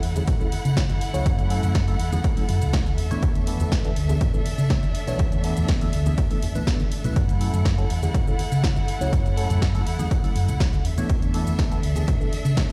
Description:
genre	filtered disco house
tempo	122 BPM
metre	4/4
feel	straight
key	F# minor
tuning	A4 = 437 Hz
part	warm studio violin section	sustained chords	0.0-12.7 s	D4 to F#5	-36 LUFS	equal	sidechain pumping
part	hollow-body short-scale fingered electric bass	bass	0.0-12.7 s	E1 to C#3	-27 LUFS	equal	sidechain pumping
part	punchy analog drum machine	drums	0.0-12.7 s	hi-hat, shaker, snare drum	-36 LUFS	equal	sidechain pumping on hats, sidechain pumping on perc, sidechain pumping on cymbals
part	tine electric piano	accompaniment	0.2-12.6 s	E3 to C#5	-33 LUFS	equal	phaser, sidechain pumping
part	congas and tambourine	percussion	0.2-12.7 s	none	-34 LUFS	equal	sidechain pumping on perc
part	electronic kick drum	drums	0.3-12.7 s	none	-25 LUFS	equal	none
room	digital ambience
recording	played on a big sound system in a bare room, stone room reverb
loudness	-23 LUFS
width	mono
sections	0.0-12.7 A section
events	none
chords	0.0 F#m7; 3.0 E7sus4; 7.2 F#m7; 10.8 E7sus4

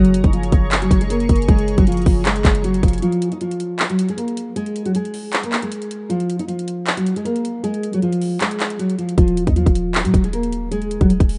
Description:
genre	hip hop, trap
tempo	156 BPM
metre	4/4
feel	half-time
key	F phrygian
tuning	A4 = 444 Hz
part	nylon-string guitar	melody	0.0-11.4 s	F3 to Eb5	-22 LUFS	equal	low-pass filter
part	sweeping resonant pad	sustained chords	0.0-3.0 s	Ab4 to Db6	-35 LUFS	equal	chorus
part	warm 808-style bass	bass	0.0-3.0, 9.2-11.4 s	Eb1 to Bb2	-24 LUFS	equal	none
part	trap drum kit	drums	0.0-11.4 s	handclaps, hi-hat, kick drum	-20 LUFS	equal	none
room	little or no reverb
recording	rough home demo mix, nothing above 10.3 kHz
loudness	-19 LUFS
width	mono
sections	0.0-3.0 A section; 3.0-11.4 B section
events	break 3.0-9.2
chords	0.0 Gbsus2; 3.0 Fm; 9.2 Ebm

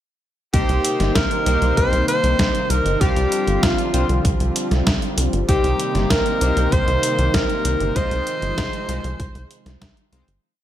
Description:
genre	synthwave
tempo	97 BPM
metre	4/4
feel	straight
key	C minor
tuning	A4 = 437 Hz
part	breathy tenor saxophone	melody	0.5-9.8 s	F4 to C5	-23 LUFS	right 1 dB	digital delay
part	FM electric piano with soft pad layer	second line	0.5-9.8 s	F4 to C5	-29 LUFS	left 1 dB	none
part	warm analog pad	sustained chords	0.5-10.4 s	C3 to F4	-26 LUFS	equal	chorus, sidechain pumping
part	chorused polysynth	stabs	0.5-10.2 s	G3 to F5	-28 LUFS	left 4 dB	cassette tape, digital delay
part	tight sequencer bass	bass	0.5-10.4 s	G1 to C2	-21 LUFS	equal	tube saturation
part	detuned 8-bit digital drum machine	drums	0.5-10.4 s	hi-hat, snare drum	-24 LUFS	equal	gated reverb
part	electronic kick drum	drums	0.5-9.9 s	none	-23 LUFS	equal	none
room	light reverb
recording	none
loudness	-17 LUFS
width	side -11 dB against mid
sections	0.5-10.4 verse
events	fade-out 7.1-10.4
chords	0.5 Cm7; 3.0 G7sus4; 5.5 Cm7; 8.0 Fm7

